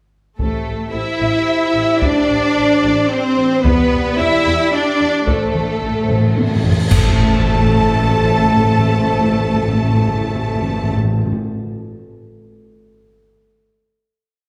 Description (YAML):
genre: cinematic, epic orchestral film score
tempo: 111 BPM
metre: 3/4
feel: straight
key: A minor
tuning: A4 = 440 Hz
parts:
  - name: rich symphonic violin section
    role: melody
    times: 0.4-10.9 s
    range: A4 to A5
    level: -26 LUFS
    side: equal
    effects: none
  - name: warm symphonic violin section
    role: second line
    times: 0.4-10.9 s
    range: A4 to A5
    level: -26 LUFS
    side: equal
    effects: none
  - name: clear symphonic viola section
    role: accompaniment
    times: 0.4-10.9 s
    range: A3 to A4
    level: -24 LUFS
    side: equal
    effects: none
  - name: dark French horn section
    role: sustained chords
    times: 0.4-10.9 s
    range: G4 to D5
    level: -27 LUFS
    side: equal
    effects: none
  - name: clear symphonic cello section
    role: bass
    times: 0.4-10.9 s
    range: A3 to E4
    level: -22 LUFS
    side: equal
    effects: none
  - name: rich symphonic double bass section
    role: bass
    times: 0.4-10.9 s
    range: A1 to E2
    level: -25 LUFS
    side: equal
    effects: none
  - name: taiko ensemble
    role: drums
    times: 0.4-7.0 s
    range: none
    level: -23 LUFS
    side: equal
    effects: none
  - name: timpani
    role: percussion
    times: 0.4-1.2, 3.7-11.4 s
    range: E2 to A2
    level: -22 LUFS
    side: equal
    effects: none
  - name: cymbal swell, clash cymbals and concert bass drum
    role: percussion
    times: 3.7-8.0 s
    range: none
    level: -24 LUFS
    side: equal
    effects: none
  - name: cymbal swell and impact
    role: sound effects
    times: 6.3-8.5 s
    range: none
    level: -29 LUFS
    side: equal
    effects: none
room: wet scoring stage reverb, RT60 1.9 s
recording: faint mains hum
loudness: -16 LUFS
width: mono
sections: 0.4-6.9 theme; 6.9-10.2 final chord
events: timpani fill 5.3-6.9; drum fill 6.1-6.9; cymbal swell 6.3-6.9; band accent 6.9-7.5; impact 6.9-8.5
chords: 0.4 Am7; 3.7 Em7; 5.3 Am